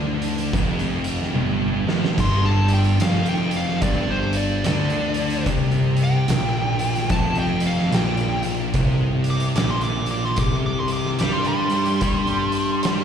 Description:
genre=stoner and doom metal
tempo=73 BPM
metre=4/4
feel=swing 62% on 8ths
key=unclear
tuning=A4 = 440 Hz
part: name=heavy high-gain guitar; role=riff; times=0.0-13.0 s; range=F2 to G3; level=-31 LUFS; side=equal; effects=distortion, slapback echo
part: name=thick fuzz guitar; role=riff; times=0.0-13.0 s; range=F2 to G3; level=-24 LUFS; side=left 6 dB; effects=distortion
part: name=thick fuzz guitar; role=riff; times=0.0-13.0 s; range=F2 to G3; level=-26 LUFS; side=right 10 dB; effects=distortion
part: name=fuzz picked electric bass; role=bass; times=0.0-13.0 s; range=F1 to G2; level=-26 LUFS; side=equal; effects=overdrive
part: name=oversized low-tuned drum kit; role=drums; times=0.2-13.0 s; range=crash cymbal, hi-hat, kick drum, snare drum, toms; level=-26 LUFS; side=right 1 dB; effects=none
part: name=fuzz lead guitar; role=melody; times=2.2-13.0 s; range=C5 to D6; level=-27 LUFS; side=equal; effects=distortion, ping-pong delay
room=small room ambience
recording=live gig heard through the venue's PA, recital hall reverb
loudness=-18 LUFS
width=side -8 dB against mid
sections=0.0-13.0 A section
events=lead electric guitar solo 0.0-13.0; drum fill 1.4-2.2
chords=0.0 G5; 8.7 C5

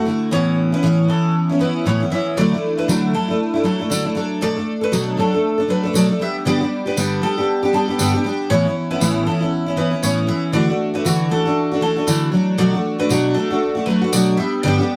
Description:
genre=acoustic pop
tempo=118 BPM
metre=4/4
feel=swing 60% on 16ths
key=D major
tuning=A4 = 444 Hz
part: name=picked steel-string acoustic guitar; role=accompaniment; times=0.0-15.0 s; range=G2 to A4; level=-19 LUFS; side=equal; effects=double-tracked
part: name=bowl-back mandolin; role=arpeggios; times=0.3-14.9 s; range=A4 to E5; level=-28 LUFS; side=equal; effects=none
part: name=tambourine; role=percussion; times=2.9-14.3 s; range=none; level=-28 LUFS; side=equal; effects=none
room=little or no reverb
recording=dry, close 1970s-style studio recording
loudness=-18 LUFS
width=mono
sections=0.0-2.4 A section; 2.4-15.0 B section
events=none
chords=0.3 Aadd9; 2.4 Dadd9; 4.2 Bm7; 6.2 G; 8.5 Aadd9; 10.5 Dadd9; 12.3 Bm7; 14.4 G

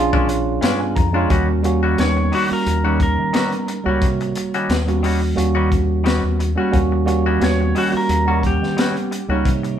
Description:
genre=straight-eighth soul blues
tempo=88 BPM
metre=4/4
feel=swing 55% on 16ths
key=Eb mixolydian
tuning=A4 = 441 Hz
part: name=tine electric piano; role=accompaniment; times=0.0-9.8 s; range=G3 to Bb5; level=-20 LUFS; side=right 4 dB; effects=none
part: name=fingered electric bass with an envelope filter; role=bass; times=0.0-9.8 s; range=Bb1 to Eb3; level=-21 LUFS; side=left 1 dB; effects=none
part: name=direct-recorded clean electric guitar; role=stabs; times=0.1-9.7 s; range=Bb2 to F#4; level=-25 LUFS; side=left 4 dB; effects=none
part: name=crunchy breakbeat drum kit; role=drums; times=0.1-9.8 s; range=hi-hat, kick drum, snare drum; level=-22 LUFS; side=left 1 dB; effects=none
part: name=clean lap steel guitar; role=melody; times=2.0-9.8 s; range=F#4 to Db5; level=-24 LUFS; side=equal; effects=none
room=light reverb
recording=band playing live in one room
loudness=-16 LUFS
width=side -9 dB against mid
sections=0.0-1.3 A section; 1.3-9.8 B section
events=tine electric piano fill 0.0-1.3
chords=0.0 Bb7#9; 1.3 Eb7#9

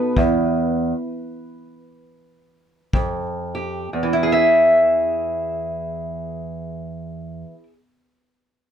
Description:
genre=acoustic country blues, solo or duo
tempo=60-68 BPM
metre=4/4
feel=swing 60% on 8ths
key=E major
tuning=A4 = 440 Hz
part: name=fingerpicked steel-string acoustic guitar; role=melody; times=0.0-7.7 s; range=E2 to E5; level=-19 LUFS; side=equal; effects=none
part: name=kick drum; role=drums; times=0.2-3.2 s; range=none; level=-21 LUFS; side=left 1 dB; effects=none
room=moderate booth ambience, RT60 0.2 s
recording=none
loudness=-18 LUFS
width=side -8 dB against mid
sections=0.0-3.9 A section; 3.9-7.9 B section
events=slowing down 0.0-3.9; stop 0.2-2.9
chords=0.2 N.C.; 2.9 Fsus2; 3.9 E

